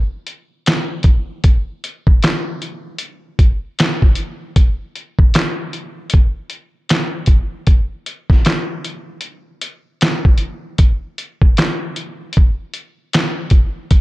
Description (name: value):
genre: hip hop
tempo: 77 BPM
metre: 4/4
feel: swing 60% on 16ths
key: none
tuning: none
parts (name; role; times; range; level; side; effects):
- lo-fi sampler-style drum kit; drums; 0.3-14.0 s; handclaps, hi-hat, kick drum, snare drum; -13 LUFS; equal; none
room: light reverb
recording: dark, warm production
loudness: -14 LUFS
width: side -19 dB against mid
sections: 0.0-14.0 A section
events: none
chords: none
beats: 0.66 | 1.44 2.22 3.00 3.78 | 4.56 5.34 6.12 6.90 | 7.68 8.46 9.23 10.01 | 10.79 11.57 12.35 13.13 | 13.91